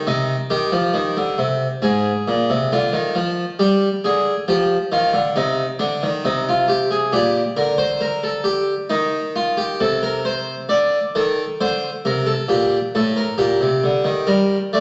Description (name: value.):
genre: classical, baroque-style two-part invention for harpsichord.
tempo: 68 BPM.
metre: 4/4.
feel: straight.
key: C minor.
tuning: A4 = 440 Hz.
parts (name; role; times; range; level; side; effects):
harpsichord; solo; 0.0-14.8 s; Ab2 to D5; -19 LUFS; equal; none.
room: wet recital hall reverb, RT60 1.4 s.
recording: vinyl crackle, nothing above 7.8 kHz.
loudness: -19 LUFS.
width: mono.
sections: 0.0-14.3 A section.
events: none.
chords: 0.1 Cm; 1.8 Fm/Ab; 3.6 G5; 5.4 Cm; 7.1 Gm/Bb; 8.9 Cm/Eb; 10.7 D5; 12.5 Gm.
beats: | 0.07 0.95 1.83 2.72 | 3.61 4.49 5.37 6.26 | 7.14 8.03 8.92 9.81 | 10.71 11.60 12.50 13.40 | 14.30.